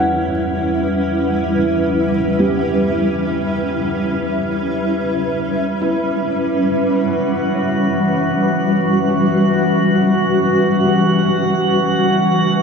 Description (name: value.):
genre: ambient.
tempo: free time.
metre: none.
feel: none.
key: E dorian.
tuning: A4 = 441 Hz.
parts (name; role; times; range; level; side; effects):
granular cloud pad; sustained chords; 0.0-12.6 s; E3 to F#5; -16 LUFS; equal; built-in reverb.
felt-muted upright piano; arpeggios; 0.0-12.6 s; G3 to F#5; -25 LUFS; right 1 dB; ping-pong delay.
warm sub bass; bass; 0.0-6.7 s; E2; -31 LUFS; equal; none.
organ-like drone; drone; 7.9-12.6 s; E3; -23 LUFS; left 1 dB; ensemble chorus, built-in reverb.
drifting glass-harmonics texture; texture; 7.1-12.6 s; F#4 to F#5; -20 LUFS; right 2 dB; chorus, built-in reverb.
room: wet cathedral reverb, RT60 5.4 s.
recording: in a vast, echoing space.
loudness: -14 LUFS.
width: side -5 dB against mid.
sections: 0.0-6.7 A section; 6.7-12.6 B section.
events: fade-out on sub bass 0.0-6.7.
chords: 0.0 Emadd9; 11.9 Dmaj7/E (rootless).